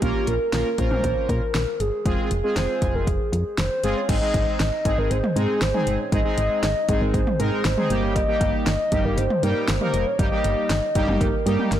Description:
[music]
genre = synth-pop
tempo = 118 BPM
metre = 4/4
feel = straight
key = unclear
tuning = A4 = 439 Hz
[part]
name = hollow clarinet-like synth lead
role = melody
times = 0.0-11.8 s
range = G4 to Eb5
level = -25 LUFS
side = equal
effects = chorus, tape echo
[part]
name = analog synth brass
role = accompaniment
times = 0.0-11.7 s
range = G3 to Bb4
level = -26 LUFS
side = right 1 dB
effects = chorus
[part]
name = solid FM bass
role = bass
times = 0.0-11.8 s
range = F1 to Bb2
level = -25 LUFS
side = equal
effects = transformer saturation
[part]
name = deep house drum kit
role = drums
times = 0.0-11.8 s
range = crash cymbal, hi-hat, kick drum, snare drum, toms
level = -25 LUFS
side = equal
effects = overdrive
[sound]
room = light reverb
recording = blown-out, overdriven recording, overdrive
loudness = -20 LUFS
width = side -11 dB against mid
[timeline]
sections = 0.0-4.1 A section; 4.1-11.8 B section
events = none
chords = 0.0 Bbm; 2.1 Fm; 4.1 Ab; 7.9 Eb

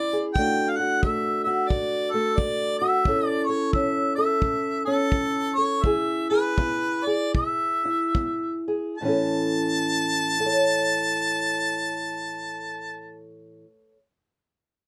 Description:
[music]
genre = acoustic country blues, solo or duo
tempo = 69-89 BPM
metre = 4/4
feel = swing 62% on 8ths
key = A major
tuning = A4 = 441 Hz
[part]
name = warm harmonica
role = melody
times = 0.0-13.2 s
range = A4 to A5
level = -27 LUFS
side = equal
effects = none
[part]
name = fingerpicked old ladder-braced acoustic guitar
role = accompaniment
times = 0.0-14.0 s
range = A2 to C#5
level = -28 LUFS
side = equal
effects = none
[part]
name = kick drum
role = drums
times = 0.4-8.4 s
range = none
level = -27 LUFS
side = equal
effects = none
[sound]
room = moderate booth ambience, RT60 0.2 s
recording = none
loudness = -24 LUFS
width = mono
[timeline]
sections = 0.0-9.0 A section; 9.0-12.4 B section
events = slowing down 3.1-9.0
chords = 0.4 D; 3.1 A; 5.8 E; 9.0 A

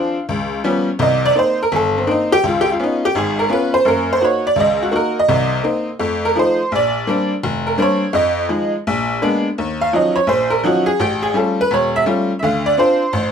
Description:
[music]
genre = solo jazz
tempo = 168 BPM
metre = 4/4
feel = swing 65% on 8ths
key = unclear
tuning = A4 = 435 Hz
[part]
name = tack piano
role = solo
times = 0.0-13.3 s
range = E1 to F5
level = -14 LUFS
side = equal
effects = none
[sound]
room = light reverb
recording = minimal, uncompressed stereo recording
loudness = -14 LUFS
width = side -7 dB against mid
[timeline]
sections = 0.0-9.6 A section; 9.6-13.3 A section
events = honky-tonk piano solo 0.0-13.3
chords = 0.3 Db7#11; 1.0 Cm7; 2.4 Db7; 3.9 Gb6; 5.3 Cm7; 6.0 F7; 6.7 Bb69; 8.1 Fm7; 8.9 Bb7b9; 9.6 Ebm9; 11.0 A7b13; 12.4 Dm7

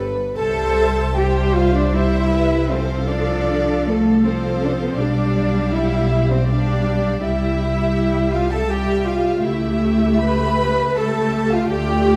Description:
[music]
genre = classical, slow romantic movement for string orchestra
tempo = 79 BPM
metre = 3/4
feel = uneven beats, rubato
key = C major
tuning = A4 = 442 Hz
[part]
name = warm chamber violin section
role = second line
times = 0.0-12.2 s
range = A4 to B5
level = -28 LUFS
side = equal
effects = none
[part]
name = rich studio cello section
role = bass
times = 0.0-12.2 s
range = G2 to B4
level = -23 LUFS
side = equal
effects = none
[part]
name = warm studio double bass section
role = bass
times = 0.0-12.2 s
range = G1 to D2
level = -24 LUFS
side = equal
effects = none
[part]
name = rich chamber violin section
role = melody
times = 0.4-12.2 s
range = D5 to F5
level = -36 LUFS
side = equal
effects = none
[part]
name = clear studio viola section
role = accompaniment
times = 0.4-12.2 s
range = F3 to C5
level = -24 LUFS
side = equal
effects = none
[sound]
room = moderate scoring stage reverb, RT60 1.9 s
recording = none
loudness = -19 LUFS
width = mono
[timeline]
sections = 0.4-12.2 A section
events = none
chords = 0.4 C; 2.7 Dm7/C; 5.0 G7/B; 7.2 C; 9.4 A7/C#

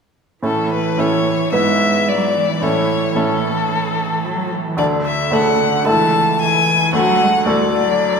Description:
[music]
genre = quick classical-period movement for piano trio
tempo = 111 BPM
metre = 4/4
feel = rubato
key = A major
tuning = A4 = 440 Hz
[part]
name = clear violin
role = melody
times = 0.4-8.2 s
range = A4 to A5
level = -17 LUFS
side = left 4 dB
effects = none
[part]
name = warm cello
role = second line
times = 0.4-8.2 s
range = C#3 to A3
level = -22 LUFS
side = right 4 dB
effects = none
[part]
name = bright baby grand piano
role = accompaniment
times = 0.4-8.2 s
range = C#2 to B4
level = -18 LUFS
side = right 2 dB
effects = none
[sound]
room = wet church reverb, RT60 2.5 s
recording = recorded in a church or concert hall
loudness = -14 LUFS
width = side -5 dB against mid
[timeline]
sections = 0.4-8.2 A section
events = none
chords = 0.4 A; 1.5 E/G#; 2.6 A; 4.8 D; 5.9 A/C#; 6.9 D

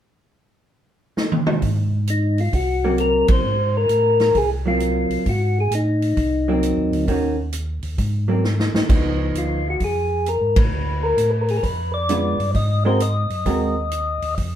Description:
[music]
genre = soul jazz organ trio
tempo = 132 BPM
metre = 4/4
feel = swing 66% on 8ths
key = Ab mixolydian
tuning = A4 = 437 Hz
[part]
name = swinging big-band drum kit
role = drums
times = 1.2-14.5 s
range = crash cymbal, hi-hat, kick drum, ride cymbal, snare drum, toms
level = -22 LUFS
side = equal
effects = none
[part]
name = mellow tonewheel organ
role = bass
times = 1.6-14.6 s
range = C2 to A2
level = -23 LUFS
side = equal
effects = slow rotary speaker
[part]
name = percussive tonewheel organ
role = melody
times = 2.1-14.3 s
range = Eb4 to Eb5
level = -21 LUFS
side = left 2 dB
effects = slow rotary speaker
[part]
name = vintage hollow-body jazz guitar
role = accompaniment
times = 2.8-13.7 s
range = D3 to Bb4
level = -22 LUFS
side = right 2 dB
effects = none
[sound]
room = wet small room reverb, RT60 0.6 s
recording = heard from further back in the room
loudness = -18 LUFS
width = side -10 dB against mid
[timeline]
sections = 0.0-1.6 A section; 1.6-14.6 B section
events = drum fill 1.2-1.6, 8.4-8.9; band accent 3.2, 10.5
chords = 0.0 N.C.; 1.6 Ab9; 7.1 Ebm7; 8.0 Ab9; 8.9 Db9; 10.7 Ddim7; 12.5 Ab9

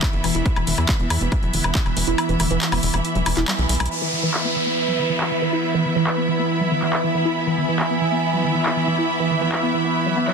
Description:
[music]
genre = psychedelic trance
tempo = 139 BPM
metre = 4/4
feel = straight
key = unclear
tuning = A4 = 441 Hz
[part]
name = overtone-sweeping drone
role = sustained chords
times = 0.0-10.3 s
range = E3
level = -24 LUFS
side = right 1 dB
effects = chorus, built-in reverb, sidechain pumping
[part]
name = electronic kick drum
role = drums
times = 0.0-1.8 s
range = none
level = -21 LUFS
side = equal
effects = overdrive, small room ambience
[part]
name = techno drum kit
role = drums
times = 0.0-10.3 s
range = handclaps, hi-hat, woodblock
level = -25 LUFS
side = left 1 dB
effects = overdrive, low-pass filter on hats, small room ambience, low-pass filter on perc, low-pass filter on snare
[part]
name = rich studio string section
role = texture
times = 0.0-10.3 s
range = B3 to B5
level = -24 LUFS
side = right 1 dB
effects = sidechain pumping
[part]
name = woody wave-folded pluck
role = riff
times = 0.1-10.3 s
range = D#3 to E4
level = -25 LUFS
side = moving between left 7 dB and right 8 dB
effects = chorus, auto-pan, sidechain pumping, dub echo
[part]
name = tight sequencer bass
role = bass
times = 0.1-3.9 s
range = E1 to E2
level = -23 LUFS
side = equal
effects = none
[part]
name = downlifter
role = sound effects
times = 3.9-7.4 s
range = none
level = -26 LUFS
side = equal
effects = none
[sound]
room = light reverb, digital ambience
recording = dense, heavily limited modern master, lossy compression artefacts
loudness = -18 LUFS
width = side -5 dB against mid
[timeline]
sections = 0.0-3.9 A section; 3.9-10.3 B section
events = kick drops out 2.2-3.9; band accent 3.5; drum fill 3.7; filter sweep on synth arpeggio sound 3.9-10.3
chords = 0.0 E5

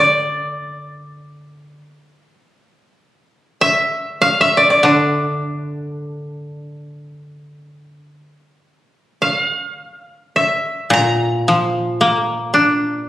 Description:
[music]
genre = japanese traditional, Japanese chamber music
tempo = free time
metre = none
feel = none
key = D hirajoshi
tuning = A4 = 440 Hz
[part]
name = koto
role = melody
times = 0.0-13.1 s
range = D4 to Bb5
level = -15 LUFS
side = equal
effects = none
[part]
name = koto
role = accompaniment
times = 0.0-13.1 s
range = Bb2 to D4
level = -17 LUFS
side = left 1 dB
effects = none
[sound]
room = moderate recital hall reverb, RT60 1.6 s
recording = recorded on a phone in the room, studio reverb, compression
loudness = -14 LUFS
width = side -14 dB against mid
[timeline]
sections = 0.0-8.5 A section; 8.5-13.1 A section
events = none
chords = none

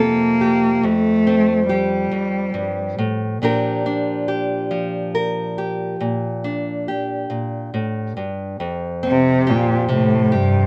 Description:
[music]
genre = folk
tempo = 46 BPM (dotted quarters)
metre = 6/8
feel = straight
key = F major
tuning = A4 = 437 Hz
[part]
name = warm cello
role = melody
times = 0.0-2.9, 9.1-10.7 s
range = G2 to Bb3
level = -19 LUFS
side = equal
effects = none
[part]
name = nylon-string guitar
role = accompaniment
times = 0.0-10.7 s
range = F2 to Bb4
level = -23 LUFS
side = equal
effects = none
[sound]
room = light reverb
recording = none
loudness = -20 LUFS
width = mono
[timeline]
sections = 0.0-8.6 A section; 8.6-10.7 B section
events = none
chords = 0.0 Fadd9; 3.4 Bb6; 8.6 Fadd9

